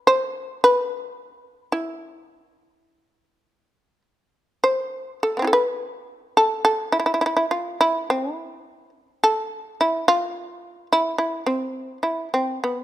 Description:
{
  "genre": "japanese traditional, Japanese chamber music",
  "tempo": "53 BPM",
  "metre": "2/4",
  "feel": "rubato",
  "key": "E miyako bushi",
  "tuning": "A4 = 440 Hz",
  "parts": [
    { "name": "shamisen", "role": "solo", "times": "0.0-12.8 s", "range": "B3 to C5", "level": "-19 LUFS", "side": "equal", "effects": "none" }
  ],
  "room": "light reverb",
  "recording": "close, detailed microphones",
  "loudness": "-20 LUFS",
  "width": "side -13 dB against mid",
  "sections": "0.0-4.7 A section; 4.7-12.8 B section",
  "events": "none",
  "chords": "none",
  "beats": "| 0.10 1.21 | 2.34 3.50 | 4.66 5.83 | 6.96 8.09 | 9.20 10.32 | 11.44 12.57"
}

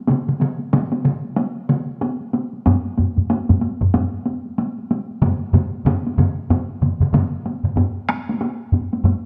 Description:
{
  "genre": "japanese traditional, taiko drum ensemble",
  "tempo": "94 BPM",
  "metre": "4/4",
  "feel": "swing 60% on 16ths",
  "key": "none",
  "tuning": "none",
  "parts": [
    { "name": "taiko ensemble", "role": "percussion", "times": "0.1-9.2 s", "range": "none", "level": "-25 LUFS", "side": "equal", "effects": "none" },
    { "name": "taiko ensemble", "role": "percussion", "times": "0.1-7.8 s", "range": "none", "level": "-23 LUFS", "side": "equal", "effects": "none" },
    { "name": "taiko ensemble", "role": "percussion", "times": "2.7-9.2 s", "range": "none", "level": "-21 LUFS", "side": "equal", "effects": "none" }
  ],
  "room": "moderate recital hall reverb, RT60 1.6 s",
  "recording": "close, detailed microphones",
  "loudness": "-20 LUFS",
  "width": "mono",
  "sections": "0.0-7.8 A section; 7.8-9.3 B section",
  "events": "none",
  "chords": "none",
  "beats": "| 0.09 0.73 1.37 2.02 | 2.66 3.30 3.94 4.58 | 5.22 5.86 6.50 7.13 | 7.77 8.41 9.04"
}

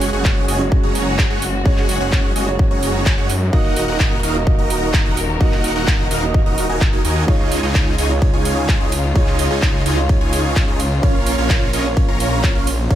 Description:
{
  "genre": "EDM, festival progressive house",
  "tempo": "128 BPM",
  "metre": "4/4",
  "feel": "straight",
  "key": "F# major",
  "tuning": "A4 = 441 Hz",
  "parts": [
    { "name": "dark grand piano", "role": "accompaniment", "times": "0.0-13.0 s", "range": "G#3 to D#5", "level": "-24 LUFS", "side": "right 4 dB", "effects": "sidechain pumping, digital delay" },
    { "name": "muted studio string section", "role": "sustained chords", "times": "0.0-13.0 s", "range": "C#3 to A#4", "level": "-26 LUFS", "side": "left 2 dB", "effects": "sidechain pumping" },
    { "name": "big supersaw lead", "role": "riff", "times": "0.0-13.0 s", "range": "C#4 to A#5", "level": "-22 LUFS", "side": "right 1 dB", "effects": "phaser, sidechain pumping, digital delay" },
    { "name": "detuned saw bass", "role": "bass", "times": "0.0-13.0 s", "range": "D#1 to F#2", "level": "-22 LUFS", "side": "equal", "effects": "sidechain pumping" },
    { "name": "house drum kit", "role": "drums", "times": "0.0-13.0 s", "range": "handclaps, hi-hat, ride cymbal", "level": "-25 LUFS", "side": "right 1 dB", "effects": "studio reverb" },
    { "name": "electronic kick drum", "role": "drums", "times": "0.2-13.0 s", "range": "none", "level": "-16 LUFS", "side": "equal", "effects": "studio reverb" }
  ],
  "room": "little or no reverb",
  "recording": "none",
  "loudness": "-14 LUFS",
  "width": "side -12 dB against mid",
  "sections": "0.0-13.0 A section",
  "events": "none",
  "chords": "0.0 F#sus2; 3.5 D#m; 7.3 C#add9; 11.0 A#m",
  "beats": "0.25 0.72 1.19 | 1.66 2.12 2.59 3.06 | 3.53 4.00 4.47 4.94 | 5.41 5.87 6.34 6.81 | 7.28 7.75 8.22 8.69 | 9.15 9.62 10.09 10.56 | 11.03 11.50 11.97 12.44 | 12.90"
}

